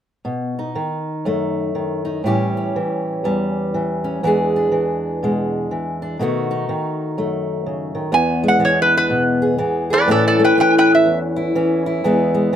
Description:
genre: acoustic country blues, solo or duo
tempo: 122 BPM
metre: 4/4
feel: swing 62% on 8ths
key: E major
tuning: A4 = 440 Hz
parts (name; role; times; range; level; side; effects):
- fingerpicked old ladder-braced acoustic guitar; accompaniment; 0.2-12.6 s; E2 to G#4; -18 LUFS; equal; none
- lap resonator guitar; melody; 8.1-11.2 s; A4 to G#5; -15 LUFS; right 2 dB; none
room: light reverb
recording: close, detailed microphones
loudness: -16 LUFS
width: side -9 dB against mid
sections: 0.3-8.1 A section; 8.1-12.6 B section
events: none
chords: 0.3 B7; 2.2 A7; 4.2 E7; 6.2 B7; 8.1 E; 10.1 A; 12.0 E

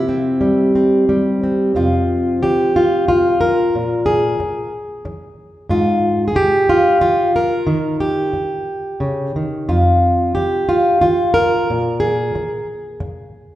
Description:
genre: folk, solo fingerstyle acoustic guitar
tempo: 91 BPM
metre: 3/4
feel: rubato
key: F minor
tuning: A4 = 440 Hz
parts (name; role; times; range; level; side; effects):
- fingerpicked plugged-in steel-string acoustic guitar; solo; 0.0-13.6 s; F2 to Bb4; -14 LUFS; equal; none
room: wet recital hall reverb, RT60 1.6 s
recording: recorded in a church or concert hall, nothing above 10.9 kHz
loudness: -14 LUFS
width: side -14 dB against mid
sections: 0.0-1.8 A section; 1.8-13.6 B section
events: none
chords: 0.0 C; 1.8 Fsus2; 3.7 Bb5; 5.7 Ab5; 7.7 Eb7; 9.7 Fsus2; 11.7 Bb5

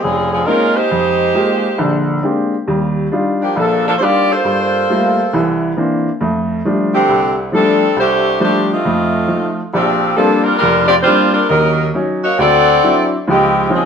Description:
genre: jazz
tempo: 136 BPM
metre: 4/4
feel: swing 65% on 8ths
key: F major, Bb major from 9.7 s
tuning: A4 = 440 Hz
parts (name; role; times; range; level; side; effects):
- clear saxophone section; melody; 0.0-13.9 s; D3 to D5; -13 LUFS; equal; none
- clear upright piano; accompaniment; 0.0-13.9 s; F1 to G4; -16 LUFS; equal; none
room: wet stone room reverb, RT60 1.1 s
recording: band playing live in one room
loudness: -12 LUFS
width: side -7 dB against mid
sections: 0.0-9.7 A section; 9.7-13.9 B section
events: none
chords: 0.0 Bbm11; 0.9 Fm11; 1.8 Bb13; 2.7 Ebmaj9; 4.4 Gm9; 5.3 C9; 6.2 F69; 8.9 F7; 9.7 Bb69; 11.5 Ebm7; 12.4 D9; 13.3 Dbmaj9

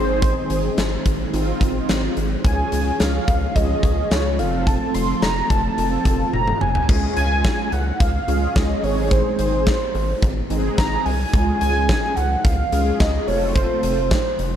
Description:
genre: synth-pop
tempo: 108 BPM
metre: 4/4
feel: straight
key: Db major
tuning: A4 = 440 Hz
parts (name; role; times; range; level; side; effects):
- warm velvety synth lead; melody; 0.0-14.6 s; C5 to C6; -24 LUFS; right 1 dB; chorus
- mellow synth brass; accompaniment; 0.0-14.2 s; Ab3 to A4; -25 LUFS; right 1 dB; chorus
- ensemble organ-string; sustained chords; 0.0-6.9 s; Eb3 to Db4; -28 LUFS; equal; ensemble chorus
- rubbery square bass; bass; 0.0-14.6 s; F1 to Db2; -23 LUFS; equal; none
- huge arena drum kit; drums; 0.2-14.5 s; crash cymbal, hi-hat, kick drum, snare drum, toms; -21 LUFS; equal; none
room: light reverb, studio reverb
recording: dark, warm production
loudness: -17 LUFS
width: side -10 dB against mid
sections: 0.0-6.9 A section; 6.9-14.6 B section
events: drum fill 6.3-6.9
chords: 0.0 Ab; 2.4 Db; 4.4 F; 6.9 Db; 8.8 Ab; 11.3 Db; 13.3 F

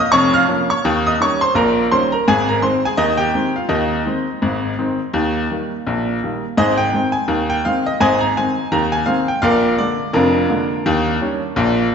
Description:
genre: ragtime piano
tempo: 84 BPM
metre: 2/4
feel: swing 57% on 16ths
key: Ab major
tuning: A4 = 441 Hz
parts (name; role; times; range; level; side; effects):
- bright baby grand piano; solo; 0.0-11.9 s; F1 to F6; -15 LUFS; equal; none
room: wet recital hall reverb, RT60 1.6 s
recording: recorded in a church or concert hall, nothing above 7.8 kHz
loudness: -15 LUFS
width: side -6 dB against mid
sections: 0.0-6.6 A section; 6.6-11.9 B section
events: none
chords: 0.0 Bbm; 0.8 Eb7; 2.3 Ab; 3.7 Ab/Eb; 5.1 Eb; 6.6 Ab; 9.4 Bb7; 10.9 Eb7

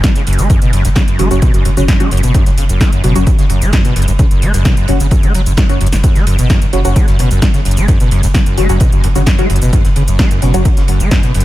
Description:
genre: driving peak-time techno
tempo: 130 BPM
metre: 4/4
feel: straight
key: F# minor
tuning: A4 = 441 Hz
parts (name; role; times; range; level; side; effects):
- overdriven acid bass; riff; 0.0-11.4 s; F#1 to A3; -16 LUFS; equal; distortion, ensemble chorus, vintage 12-bit sampler grit, sidechain pumping, tape echo
- saturated sub bass; bass; 0.0-11.4 s; F#1; -15 LUFS; equal; overdrive, sidechain pumping, low-pass filter
- electronic kick drum; drums; 0.0-11.2 s; none; -12 LUFS; equal; none
- techno drum kit; drums; 0.0-11.4 s; hi-hat, shaker, snare drum; -20 LUFS; equal; none
- warm soul drum kit; drums; 0.0-11.4 s; ride cymbal, snare drum; -29 LUFS; right 3 dB; sidechain pumping on cymbals, high-pass filter on cymbals, high-pass filter on snare, high-pass filter on room
- filtered dub chord stab; stabs; 1.2-10.6 s; F#3 to F#4; -19 LUFS; equal; phaser, lush chorus, sidechain pumping, tape echo
room: little or no reverb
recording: none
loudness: -9 LUFS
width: side -16 dB against mid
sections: 0.0-11.4 A section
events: none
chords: 0.0 F#5

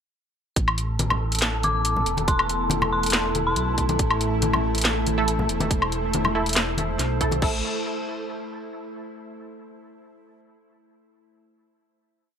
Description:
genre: deep dubstep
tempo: 140 BPM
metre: 4/4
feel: half-time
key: A minor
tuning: A4 = 440 Hz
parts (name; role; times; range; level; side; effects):
- bowed-like drone; sustained chords; 1.6-7.6 s; A3 to C5; -30 LUFS; right 1 dB; built-in reverb
- dark detuned saw bass; bass; 0.6-7.6 s; E1 to B1; -27 LUFS; equal; none
- electronic kick drum; drums; 0.6-7.5 s; none; -25 LUFS; equal; none
- garage drum kit; drums; 0.6-7.5 s; crash cymbal, hi-hat, snare drum, woodblock; -25 LUFS; equal; none
- wind-like tuned noise texture; texture; 0.9-7.4 s; A4; -30 LUFS; left 1 dB; built-in reverb
- congas; percussion; 1.0-7.4 s; none; -31 LUFS; left 3 dB; none
- dark detuned synth bell; melody; 1.6-3.8 s; C6 to D6; -27 LUFS; left 2 dB; chorus, dub echo
- filtered dub chord stab; stabs; 5.2-7.6 s; A3 to A4; -30 LUFS; right 4 dB; analog chorus, dub echo
room: moderate digital room reverb, RT60 1.2 s, digital ambience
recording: none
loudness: -21 LUFS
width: side -8 dB against mid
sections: 0.6-7.4 drop; 7.4-9.1 final chord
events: drop 0.6-7.4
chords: 0.6 A5

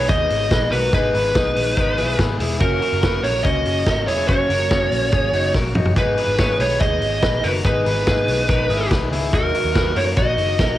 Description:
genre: jangly indie pop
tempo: 143 BPM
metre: 4/4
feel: straight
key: G# minor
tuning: A4 = 440 Hz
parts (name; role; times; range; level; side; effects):
- fuzz lead guitar; melody; 0.0-10.8 s; A#4 to D#5; -20 LUFS; right 1 dB; distortion, cassette tape, tape echo
- crunchy overdriven guitar; accompaniment; 0.0-10.8 s; F#2 to D#4; -30 LUFS; right 6 dB; none
- electric guitar through a small old amp; arpeggios; 0.0-10.8 s; C#4 to C#5; -24 LUFS; left 5 dB; spring reverb, tape echo
- vintage muted picked electric bass; bass; 0.0-10.8 s; E1 to F#2; -24 LUFS; equal; none
- vintage drum kit; drums; 0.1-10.7 s; hi-hat, kick drum, ride cymbal, snare drum, toms; -21 LUFS; equal; cassette tape
room: light reverb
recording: home recording on cassette, vinyl crackle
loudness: -16 LUFS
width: side -14 dB against mid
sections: 0.0-10.8 A section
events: drum fill 5.5-6.0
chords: 0.0 G#m

